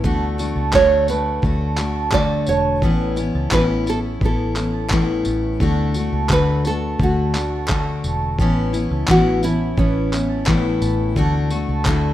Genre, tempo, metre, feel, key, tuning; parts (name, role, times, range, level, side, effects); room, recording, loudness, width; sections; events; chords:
acoustic pop; 86 BPM; 4/4; straight; D major; A4 = 438 Hz
picked steel-string acoustic guitar; accompaniment; 0.0-12.1 s; A2 to F#4; -21 LUFS; left 2 dB
mandolin; arpeggios; 0.0-12.1 s; A3 to A5; -29 LUFS; right 6 dB
vintage muted fingered electric bass; bass; 0.0-12.1 s; E1 to D2; -23 LUFS; equal
dusty soul sampler-style drum kit; drums; 0.0-12.0 s; handclaps, kick drum, tambourine; -22 LUFS; equal; overdrive
nylon-string guitar; melody; 0.7-12.1 s; C#4 to D5; -20 LUFS; right 3 dB
group handclap; percussion; 0.7-12.0 s; -32 LUFS; left 1 dB
light reverb, small room ambience; rough home demo mix; -16 LUFS; side -13 dB against mid
0.0-12.1 A section
0.0 D; 2.8 Aadd9; 5.6 D; 8.4 Aadd9; 11.2 D